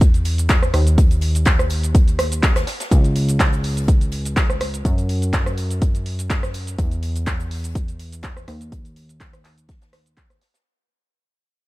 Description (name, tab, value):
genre	piano house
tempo	124 BPM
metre	4/4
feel	swing 54% on 16ths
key	unclear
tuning	A4 = 440 Hz
part	plucky analog bass	bass	0.0-10.4 s	Db2 to Gb2	-21 LUFS	equal	sidechain pumping
part	electronic kick drum	drums	0.0-10.3 s	none	-17 LUFS	equal	none
part	punchy analog drum machine	drums	0.0-10.6 s	handclaps, hi-hat, rim click, shaker	-25 LUFS	equal	none
part	swinging big-band drum kit	drums	0.0-10.7 s	hi-hat, snare drum	-38 LUFS	left 2 dB	sidechain pumping on hats, high-pass filter on hats, high-pass filter on snare, high-pass filter on room
room	little or no reverb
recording	none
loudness	-17 LUFS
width	side -19 dB against mid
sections	0.0-10.7 A section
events	drop 0.0-10.7; fade-out 2.9-10.7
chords	none